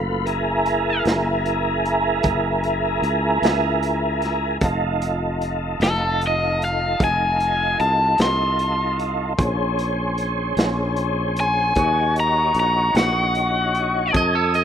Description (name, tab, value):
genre	slow blues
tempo	50 BPM (dotted quarters)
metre	12/8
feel	straight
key	unclear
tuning	A4 = 444 Hz
part	overdriven electric guitar	melody	0.0-14.1 s	A4 to C6	-21 LUFS	left 2 dB	none
part	tonewheel organ	sustained chords	0.0-14.6 s	A3 to G#5	-22 LUFS	right 1 dB	slow rotary speaker, chorus vibrato
part	sustaining fretless electric bass	bass	0.0-14.6 s	F1 to F2	-25 LUFS	equal	none
part	crunchy breakbeat drum kit	drums	0.3-14.6 s	hi-hat, kick drum, snare drum	-24 LUFS	equal	none
part	electric guitar at the edge of break-up	second line	14.2-14.6 s	A4 to Eb5	-20 LUFS	right 3 dB	none
room	light reverb, studio reverb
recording	rough home demo mix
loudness	-18 LUFS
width	side -8 dB against mid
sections	0.0-14.6 A section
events	none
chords	0.0 Gb7; 4.6 F7; 9.4 Bbm9; 11.8 Ebm7; 14.1 F7#9